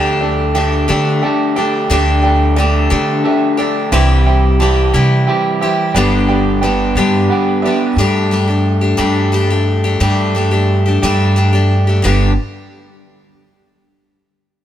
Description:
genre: folk rock and heartland rock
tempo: 59 BPM (dotted quarters)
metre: 6/8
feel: straight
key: G major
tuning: A4 = 438 Hz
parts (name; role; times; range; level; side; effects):
- clear concert grand piano; accompaniment; 0.0-8.0 s; G4 to A5; -22 LUFS; right 4 dB; none
- picked steel-string acoustic guitar; accompaniment; 0.0-12.3 s; G2 to G4; -17 LUFS; left 4 dB; none
- electric guitar through a small old amp; riff; 0.0-12.3 s; G2 to G4; -17 LUFS; right 2 dB; none
- upright bass; bass; 0.0-12.4 s; G1 to D3; -14 LUFS; equal; none
room: light reverb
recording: none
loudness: -11 LUFS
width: side -11 dB against mid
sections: 0.0-8.0 A section; 8.0-12.0 B section; 12.0-14.1 C section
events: none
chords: 0.0 Gsus2/D; 3.9 C; 6.0 G; 8.0 Gsus2; 12.0 G

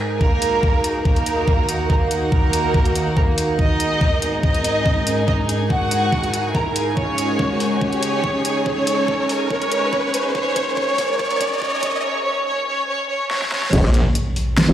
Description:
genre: heavy wobble dubstep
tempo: 142 BPM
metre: 4/4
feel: half-time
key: unclear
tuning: A4 = 440 Hz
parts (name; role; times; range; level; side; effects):
- evolving wavetable pad; sustained chords; 0.0-12.0 s; Eb2 to Db5; -26 LUFS; equal; chorus, built-in reverb, sidechain pumping
- dubstep drum kit; drums; 0.0-14.7 s; crash cymbal, finger snaps, hi-hat, snare drum; -23 LUFS; equal; overdrive
- rich chamber string section; texture; 0.0-12.0 s; Eb4 to Ab5; -26 LUFS; right 2 dB; sidechain pumping
- warm studio violin section; melody; 0.2-13.7 s; Bb3 to Bb5; -21 LUFS; right 1 dB; tape echo
- electronic kick drum; drums; 0.2-13.8 s; none; -19 LUFS; equal; overdrive
- riser and impact; sound effects; 2.1-14.7 s; none; -26 LUFS; equal; none
- growl bass; bass; 13.7-14.7 s; Eb1; -14 LUFS; equal; chorus, overdrive
- snarling distorted saw bass; bass; 13.8-14.0 s; Bb1; -16 LUFS; equal; distortion, overdrive
room: light reverb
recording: played on a big sound system in a bare room, large studio reverb, high-pass filter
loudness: -17 LUFS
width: side -11 dB against mid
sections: 0.2-13.7 A section; 13.7-14.7 B section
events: build-up 0.2-13.7; filter sweep on ambient pad 0.2-13.7; filter sweep 0.2-13.7; riser 2.1-12.0; drum fill 7.0-12.0, 13.3-13.7; drop 13.7-14.7; impact 13.7-14.7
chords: 0.2 Ebm; 3.6 Absus2; 7.0 Dbsus2; 10.3 Absus2; 13.7 N.C.

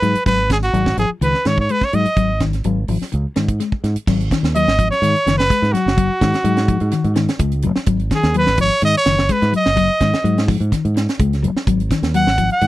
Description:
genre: afrobeat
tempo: 126 BPM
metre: 4/4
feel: straight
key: G# dorian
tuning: A4 = 444 Hz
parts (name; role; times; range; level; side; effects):
- bright trumpet; melody; 0.0-12.7 s; F#4 to F#5; -17 LUFS; right 1 dB; none
- semi-hollow electric guitar; arpeggios; 0.0-12.7 s; D#3 to G#3; -21 LUFS; left 6 dB; spring reverb
- fingered electric bass; bass; 0.0-12.7 s; F#1 to G#2; -19 LUFS; right 1 dB; none
- tight funk drum kit; drums; 0.0-12.7 s; crash cymbal, hi-hat, kick drum, snare drum; -20 LUFS; right 1 dB; none
room: little or no reverb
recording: dry, close 1970s-style studio recording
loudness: -14 LUFS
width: side -16 dB against mid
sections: 0.0-4.1 A section; 4.1-12.7 B section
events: none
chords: 0.0 G#m7; 4.1 G#5

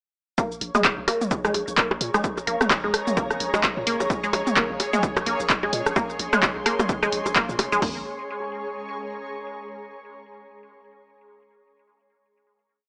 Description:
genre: minimal techno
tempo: 129 BPM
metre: 4/4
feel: swing 58% on 16ths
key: Bb minor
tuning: A4 = 440 Hz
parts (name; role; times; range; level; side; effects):
- resonant blip pluck; riff; 0.4-8.0 s; Ab3 to Bb3; -29 LUFS; equal; phaser, sidechain pumping, tape echo
- punchy analog drum machine; drums; 0.4-7.9 s; hi-hat, kick drum, toms; -30 LUFS; equal; none
- punchy analog drum machine; drums; 0.4-7.8 s; handclaps, hi-hat, shaker; -26 LUFS; equal; none
- flickering grainy texture; texture; 0.7-7.8 s; Db5; -39 LUFS; equal; none
- granular cloud pad; texture; 1.6-9.6 s; Ab4 to C6; -34 LUFS; equal; built-in reverb, sidechain pumping
- punchy sub bass; bass; 0.6-8.0 s; F1 to Bb2; -38 LUFS; equal; sidechain pumping
- minimal click drum kit; percussion; 0.7-7.7 s; percussion blips, rim click, toms; -28 LUFS; equal; tape echo
room: light reverb, digital ambience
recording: small speaker sound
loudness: -24 LUFS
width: mono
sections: 0.4-7.8 drop; 7.8-9.7 final chord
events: drop 0.4-7.8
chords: 0.4 Bbm7

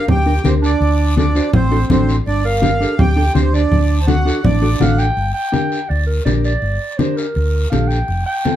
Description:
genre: latin, cumbia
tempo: 165 BPM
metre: 4/4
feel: straight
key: G minor from 5.2 s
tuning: A4 = 440 Hz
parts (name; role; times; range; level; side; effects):
- accordion; melody; 0.0-5.1 s; C5 to A5; -21 LUFS; right 2 dB; light tremolo tuning
- growling clarinet; second line; 0.0-8.6 s; C4 to G5; -22 LUFS; right 4 dB; none
- mellow electric guitar; accompaniment; 0.0-8.6 s; C4 to C5; -20 LUFS; equal; none
- hollow-body short-scale fingered electric bass; bass; 0.1-8.2 s; F1 to D2; -16 LUFS; equal; none
- congas; percussion; 0.1-8.6 s; none; -18 LUFS; left 2 dB; none
- guiro; percussion; 0.1-8.6 s; none; -33 LUFS; left 4 dB; none
room: moderate studio ambience, RT60 0.5 s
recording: dark, warm production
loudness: -13 LUFS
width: side -11 dB against mid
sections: 0.0-5.2 A section; 5.2-8.6 B section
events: clarinet solo 5.2-8.6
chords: 0.0 Gm; 0.8 D7; 2.3 Gm; 3.7 D; 5.2 Gm

